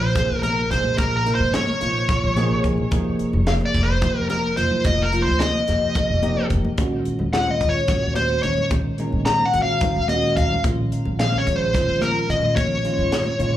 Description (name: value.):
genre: electric jazz fusion.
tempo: 217 BPM (eighths).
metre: 7/8.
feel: straight.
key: Bb minor.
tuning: A4 = 436 Hz.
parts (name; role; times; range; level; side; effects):
smooth overdriven lead guitar; melody; 0.0-13.6 s; Bb4 to Bb5; -22 LUFS; left 1 dB; plate reverb, slapback echo, tape echo.
tine electric piano; accompaniment; 0.0-13.6 s; Bb2 to Ab5; -24 LUFS; right 1 dB; lush chorus.
upright bass; bass; 0.0-13.6 s; F1 to Eb3; -25 LUFS; equal; none.
tight funk drum kit; drums; 0.2-13.5 s; hi-hat, kick drum, snare drum; -25 LUFS; equal; none.
congas; percussion; 0.2-13.6 s; none; -30 LUFS; left 2 dB; slapback echo.
room: moderate club reverb, RT60 0.5 s.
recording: live gig heard through the venue's PA, club ambience.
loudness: -18 LUFS.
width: side -12 dB against mid.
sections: 0.0-13.6 A section.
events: tine electric piano fill 2.1-2.9.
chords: 0.0 Bbm9; 2.9 Fm9; 6.8 Ebm9; 10.6 Bbm7.